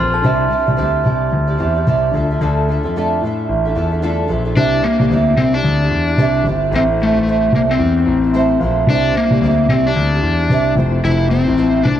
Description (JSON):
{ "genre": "pop", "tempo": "111 BPM", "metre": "4/4", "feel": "swing 60% on 16ths", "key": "unclear", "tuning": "A4 = 438 Hz", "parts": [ { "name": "fingerpicked twelve-string acoustic guitar", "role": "accompaniment", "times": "0.0-12.0 s", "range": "F2 to E5", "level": "-19 LUFS", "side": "right 6 dB", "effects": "none" }, { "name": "reed electric piano", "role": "accompaniment", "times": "0.0-12.0 s", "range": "G3 to C6", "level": "-27 LUFS", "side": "left 5 dB", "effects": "fast tremolo" }, { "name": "warm concert grand piano", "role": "bass", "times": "0.0-12.0 s", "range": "F1 to A2", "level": "-17 LUFS", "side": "left 1 dB", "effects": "none" }, { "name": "overdriven slide guitar", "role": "melody", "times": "4.6-12.0 s", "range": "A3 to E4", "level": "-17 LUFS", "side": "left 4 dB", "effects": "tape echo" } ], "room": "light reverb, small room ambience", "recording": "dark, warm production", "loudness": "-13 LUFS", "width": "side -10 dB against mid", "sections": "0.0-4.6 A section; 4.6-12.0 B section", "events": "reed electric piano fill 8.1-8.9", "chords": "0.2 Cadd9; 2.1 Dmadd9; 4.6 Cadd9; 6.7 Am; 8.9 Cadd9; 10.8 Fmaj7", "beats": "| 0.25 0.79 1.33 1.87 | 2.41 2.95 3.49 4.03 | 4.57 5.11 5.65 6.19 | 6.73 7.27 7.81 8.35 | 8.89 9.43 9.96 10.50 | 11.04 11.58" }